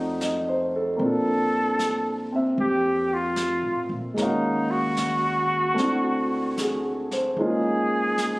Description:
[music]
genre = jazz ballad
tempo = 75 BPM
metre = 4/4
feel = swing 67% on 8ths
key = unclear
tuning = A4 = 440 Hz
[part]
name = clear flugelhorn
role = melody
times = 0.0-8.4 s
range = Eb4 to A4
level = -25 LUFS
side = equal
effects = none
[part]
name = warm grand piano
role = accompaniment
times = 0.0-8.4 s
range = Ab3 to F5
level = -24 LUFS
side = equal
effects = none
[part]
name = upright bass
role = bass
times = 0.0-8.4 s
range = Bb1 to Bb2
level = -36 LUFS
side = equal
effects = none
[part]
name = jazz brush drum kit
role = drums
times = 0.2-8.4 s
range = brushed snare drum, hi-hat, snare drum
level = -36 LUFS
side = equal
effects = none
[sound]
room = light reverb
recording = recorded on a phone in the room, club reverb, compression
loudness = -22 LUFS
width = side -22 dB against mid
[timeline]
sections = 0.0-8.4 A section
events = none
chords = 0.0 F7b9; 1.0 Bbmaj9; 4.2 Ebm11; 5.8 D9; 7.4 Db69

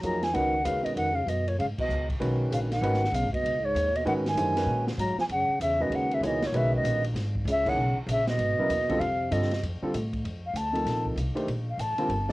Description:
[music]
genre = modal jazz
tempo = 194 BPM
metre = 4/4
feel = swing 63% on 8ths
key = Db mixolydian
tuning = A4 = 440 Hz
[part]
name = mellow silver concert flute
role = melody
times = 0.0-12.3 s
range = Db5 to Bb5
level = -28 LUFS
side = equal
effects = none
[part]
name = breathy trombone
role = second line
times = 0.0-9.6 s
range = Ab2 to Gb3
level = -33 LUFS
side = right 1 dB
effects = cassette tape
[part]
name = warm baby grand piano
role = accompaniment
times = 0.0-12.3 s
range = C3 to Db5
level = -30 LUFS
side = equal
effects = cassette tape
[part]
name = upright bass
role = bass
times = 0.0-12.3 s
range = Gb1 to Bb2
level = -30 LUFS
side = equal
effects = none
[part]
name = open jazz drum kit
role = drums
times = 0.0-12.3 s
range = crash cymbal, hi-hat, kick drum, ride cymbal, snare drum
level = -38 LUFS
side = equal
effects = none
[sound]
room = light reverb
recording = home recording on cassette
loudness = -25 LUFS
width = side -19 dB against mid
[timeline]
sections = 0.3-10.2 A section; 10.2-12.3 B section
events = band accent 1.7, 7.6; flute solo 10.2-12.3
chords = 0.3 Db9sus4; 5.3 Gb9sus4; 9.0 F7; 10.2 Bbmaj9

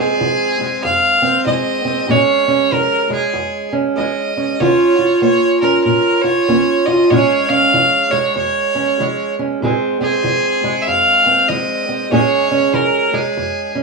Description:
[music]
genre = acoustic country blues, solo or duo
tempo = 96 BPM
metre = 4/4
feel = swing 61% on 8ths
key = Bb minor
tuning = A4 = 440 Hz
[part]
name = clear fiddle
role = melody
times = 0.0-13.8 s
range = Ab4 to F5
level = -15 LUFS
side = right 1 dB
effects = plate reverb
[part]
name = fingerpicked steel-string acoustic guitar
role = accompaniment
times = 0.0-13.8 s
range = F2 to Ab4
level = -16 LUFS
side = right 2 dB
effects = none
[sound]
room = wet studio ambience, RT60 0.5 s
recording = heard from further back in the room, vinyl crackle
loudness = -13 LUFS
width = side -3 dB against mid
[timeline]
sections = 0.0-13.8 A section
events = none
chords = 0.0 Bbm9; 4.6 Ebsus2; 7.1 Bbm9

